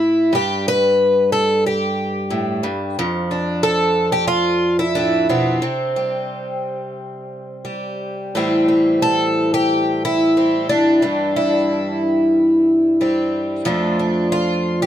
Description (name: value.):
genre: folk, solo fingerstyle acoustic guitar.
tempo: 90 BPM.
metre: 4/4.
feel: rubato.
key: C major.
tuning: A4 = 440 Hz.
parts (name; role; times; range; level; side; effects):
picked twelve-string acoustic guitar; solo; 0.0-14.9 s; F2 to B4; -16 LUFS; equal; none.
room: little or no reverb.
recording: close, detailed microphones.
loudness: -15 LUFS.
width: side -10 dB against mid.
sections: 0.0-8.3 A section; 8.3-14.9 A section.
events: none.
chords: 0.3 Gadd9; 3.0 F6; 5.6 C5; 8.3 Am7; 11.0 C/G; 13.7 F6.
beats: | 0.33 0.99 1.65 2.30 | 2.96 3.62 4.28 4.95 | 5.61 6.29 6.97 7.66 | 8.35 9.02 9.70 10.36 | 11.02 11.68 12.34 13.00 | 13.66 14.32.